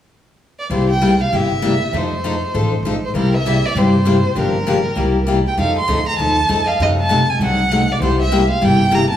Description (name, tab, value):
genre	acoustic string swing (jazz manouche)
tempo	197 BPM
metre	4/4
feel	swing 58% on 8ths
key	C mixolydian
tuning	A4 = 437 Hz
part	warm violin	melody	0.6-9.2 s	Bb4 to C6	-19 LUFS	right 1 dB	none
part	picked steel-string acoustic guitar	accompaniment	0.7-9.0 s	C3 to A4	-17 LUFS	left 2 dB	none
part	upright bass	bass	0.7-9.1 s	G1 to G2	-20 LUFS	equal	none
room	wet recital hall reverb, RT60 1.7 s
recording	recorded in a church or concert hall, small room ambience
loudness	-14 LUFS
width	side -10 dB against mid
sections	0.7-9.2 A section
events	none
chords	0.0 N.C.; 0.7 C7; 1.9 F7; 3.1 C7; 4.4 Gm7; 5.0 C7; 5.6 F7; 6.8 F#dim7; 8.0 C7